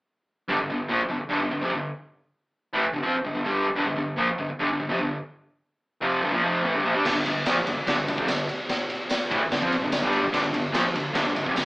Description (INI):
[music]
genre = garage rock duo or trio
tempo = 146 BPM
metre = 4/4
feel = straight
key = G minor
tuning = A4 = 439 Hz
[part]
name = fuzz guitar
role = riff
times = 0.5-11.7 s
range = F2 to D4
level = -23 LUFS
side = equal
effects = distortion
[part]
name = raw garage drum kit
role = drums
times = 7.1-11.7 s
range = crash cymbal, kick drum, ride cymbal, snare drum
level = -26 LUFS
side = equal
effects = none
[part]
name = tambourine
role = percussion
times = 7.5-11.7 s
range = none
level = -39 LUFS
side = right 2 dB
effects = none
[sound]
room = moderate studio reverb, RT60 0.7 s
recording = band playing live in one room, AM radio sound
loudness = -22 LUFS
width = side -24 dB against mid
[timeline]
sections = 0.5-7.1 A section; 7.1-11.7 B section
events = none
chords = 0.5 G5